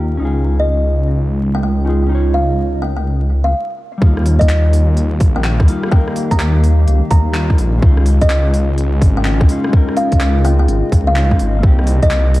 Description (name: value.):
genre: future garage.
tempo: 126 BPM.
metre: 4/4.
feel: swing 65% on 16ths.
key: unclear.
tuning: A4 = 437 Hz.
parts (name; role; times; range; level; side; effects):
mellow electric guitar; accompaniment; 0.0-12.4 s; G3 to Db5; -23 LUFS; left 3 dB; sidechain pumping, analog delay.
warbly tape-like pad; sustained chords; 0.0-12.4 s; C3 to G5; -23 LUFS; equal; chorus, built-in reverb, sidechain pumping.
swelling detuned saw bass; bass; 0.0-12.4 s; Ab1 to Eb2; -14 LUFS; equal; none.
kalimba; melody; 0.6-12.3 s; Eb5 to Bb5; -22 LUFS; equal; vintage 12-bit sampler grit, analog delay.
electronic kick drum; drums; 4.0-12.1 s; none; -13 LUFS; equal; none.
garage drum kit; drums; 4.2-12.4 s; handclaps, hi-hat, rim click; -26 LUFS; equal; low-pass filter on snare, low-pass filter on hats, low-pass filter on room.
room: digital ambience.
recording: vinyl crackle.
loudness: -12 LUFS.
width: side -18 dB against mid.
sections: 0.0-4.0 A section; 4.0-12.4 B section.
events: filter sweep on ambient pad 0.0-4.0; stop 3.5-4.0.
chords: 0.2 Dbadd9; 4.0 Ebadd9; 7.8 Dbadd9; 11.6 Cm7.